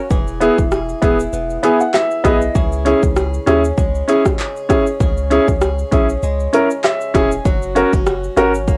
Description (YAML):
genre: dancehall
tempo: 98 BPM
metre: 4/4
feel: swing 56% on 16ths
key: C# dorian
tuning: A4 = 439 Hz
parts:
  - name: picked swing-style acoustic guitar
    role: arpeggios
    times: 0.0-8.8 s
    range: C#3 to G#4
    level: -26 LUFS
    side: equal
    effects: cassette tape, analog delay
  - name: punchy sub bass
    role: bass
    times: 0.1-8.8 s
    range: E1 to D#2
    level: -24 LUFS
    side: equal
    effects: none
  - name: pop drum kit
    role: drums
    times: 0.1-8.8 s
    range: handclaps, hi-hat, kick drum, rim click, shaker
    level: -20 LUFS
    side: equal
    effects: overdrive, cassette tape
  - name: warm grand piano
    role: accompaniment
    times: 0.4-8.5 s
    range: B3 to G#5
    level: -16 LUFS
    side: equal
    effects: cassette tape
room: light reverb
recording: home recording on cassette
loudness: -16 LUFS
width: mono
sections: 0.0-8.8 A section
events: grand piano fill 1.3-2.6, 6.5-7.5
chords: 0.1 E; 2.6 C#m; 7.5 F#